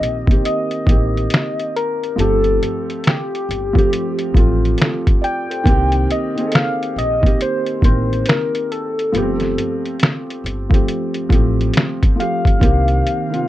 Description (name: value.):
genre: lo-fi hip hop.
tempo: 69 BPM.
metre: 4/4.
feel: swing 62% on 16ths.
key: C dorian.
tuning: A4 = 442 Hz.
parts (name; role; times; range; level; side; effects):
soft struck synth lead; melody; 0.0-13.5 s; G4 to G5; -21 LUFS; left 1 dB; chorus, analog delay.
felt-muted upright piano; accompaniment; 0.0-13.5 s; Eb3 to D5; -21 LUFS; right 1 dB; cassette tape.
upright bass; bass; 0.0-13.0 s; G1 to C2; -20 LUFS; equal; none.
lo-fi sampler-style drum kit; drums; 0.0-13.5 s; finger snaps, hi-hat, kick drum, snare drum; -15 LUFS; equal; none.
hollow soft pad; sustained chords; 13.0-13.5 s; C3 to Bb3; -27 LUFS; right 2 dB; chorus.
room: light reverb.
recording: dark, warm production.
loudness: -15 LUFS.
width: side -14 dB against mid.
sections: 0.0-13.5 A section.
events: none.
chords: 0.0 Cm7; 2.2 G9sus4; 5.7 Cm7; 9.1 G9sus4; 12.6 Cm7.